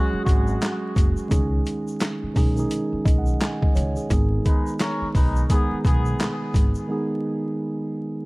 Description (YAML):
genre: hip hop, boom-bap hip-hop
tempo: 86 BPM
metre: 4/4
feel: swing 60% on 16ths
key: G# minor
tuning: A4 = 440 Hz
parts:
  - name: mellow tine electric piano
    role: accompaniment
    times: 0.0-8.3 s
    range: D#3 to G#5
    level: -26 LUFS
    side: right 1 dB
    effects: high-pass filter, low-pass filter
  - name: muted trumpet section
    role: stabs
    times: 0.0-6.4 s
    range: G#3 to C#5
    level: -31 LUFS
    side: left 1 dB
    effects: high-pass filter, low-pass filter, analog delay
  - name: upright bass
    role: bass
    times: 0.1-6.7 s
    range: F#1 to C#2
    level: -25 LUFS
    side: equal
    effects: none
  - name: boom bap sampler-style drum kit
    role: drums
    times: 0.3-6.7 s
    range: handclaps, hi-hat, kick drum, snare drum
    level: -21 LUFS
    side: equal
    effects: none
  - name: egg shaker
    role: percussion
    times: 0.3-6.9 s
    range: none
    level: -47 LUFS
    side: left 4 dB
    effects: none
room: small room reverb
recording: vinyl crackle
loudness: -20 LUFS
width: side -23 dB against mid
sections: 0.0-8.3 A section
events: break 6.9-8.3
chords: 0.0 F#sus2; 1.3 C#sus2; 4.1 G#m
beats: 0.61 | 1.31 2.01 2.71 3.41 | 4.10 4.80 5.50 6.20 | 6.89 7.59